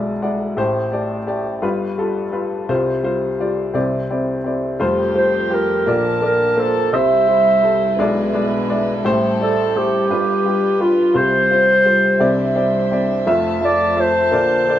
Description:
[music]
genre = acoustic folk-pop ballad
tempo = 57 BPM (dotted quarters)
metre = 6/8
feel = straight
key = F major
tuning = A4 = 441 Hz
[part]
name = clear upright piano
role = accompaniment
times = 0.0-14.8 s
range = F1 to Gb5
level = -18 LUFS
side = left 1 dB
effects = none
[part]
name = warm chamber string section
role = sustained chords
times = 4.8-14.8 s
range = B2 to A5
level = -23 LUFS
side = right 1 dB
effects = none
[part]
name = mellow clarinet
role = melody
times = 5.2-14.8 s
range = F4 to E5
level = -15 LUFS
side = right 1 dB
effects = none
[sound]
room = moderate studio reverb, RT60 0.5 s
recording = band playing live in one room, nothing above 10.4 kHz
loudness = -15 LUFS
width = side -11 dB against mid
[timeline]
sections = 0.0-4.8 A section; 4.8-14.8 B section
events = none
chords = 0.0 E7/B; 0.6 Am7; 1.6 G7; 2.7 Csus4; 3.8 Cadd9; 4.8 Fsus2; 5.9 Bbmaj7; 6.9 C; 8.0 E7/B; 9.0 Am7; 10.1 G7; 11.2 Csus4; 12.2 Cadd9; 13.3 Fmaj7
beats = | 0.58 1.64 | 2.69 3.75 | 4.81 5.87 | 6.93 7.99 | 9.04 10.10 | 11.15 12.21 | 13.27 14.33

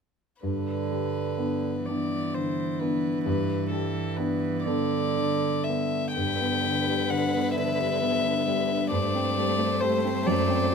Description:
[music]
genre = classical, slow romantic movement for piano quartet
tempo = 42 BPM (dotted quarters)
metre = 6/8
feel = uneven beats, rubato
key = G major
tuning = A4 = 440 Hz
[part]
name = rich violin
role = melody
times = 0.4-10.7 s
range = A4 to G5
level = -30 LUFS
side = left 5 dB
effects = none
[part]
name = warm cello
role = second line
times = 0.4-10.7 s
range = D3 to A3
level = -32 LUFS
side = right 10 dB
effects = none
[part]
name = warm concert grand piano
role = accompaniment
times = 0.4-10.7 s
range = F#2 to D4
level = -27 LUFS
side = left 1 dB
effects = none
[part]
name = rich violin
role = second line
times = 6.2-10.7 s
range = B4 to C5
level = -32 LUFS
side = equal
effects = none
[sound]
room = light reverb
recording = close, detailed microphones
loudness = -24 LUFS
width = side -6 dB against mid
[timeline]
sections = 0.4-6.2 A section; 6.2-10.7 B section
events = none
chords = 0.4 G; 8.9 Am7/G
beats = | 0.44 1.87 | 3.27 4.67 | 6.17 7.58 | 8.92 10.26

